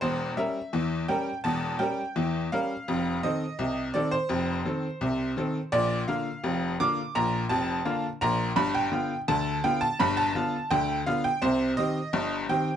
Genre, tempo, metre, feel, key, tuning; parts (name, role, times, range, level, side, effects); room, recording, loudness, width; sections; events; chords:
ragtime piano; 84 BPM; 2/4; straight; Bb major; A4 = 439 Hz
tack piano; solo; 0.0-12.8 s; E1 to D6; -25 LUFS; equal
moderate small room reverb, RT60 0.5 s; dark, warm production, nothing above 10.9 kHz; -25 LUFS; side -9 dB against mid
0.0-12.8 A section
0.0 Edim7; 2.9 F7; 5.7 Bb; 8.6 G7; 11.4 Cm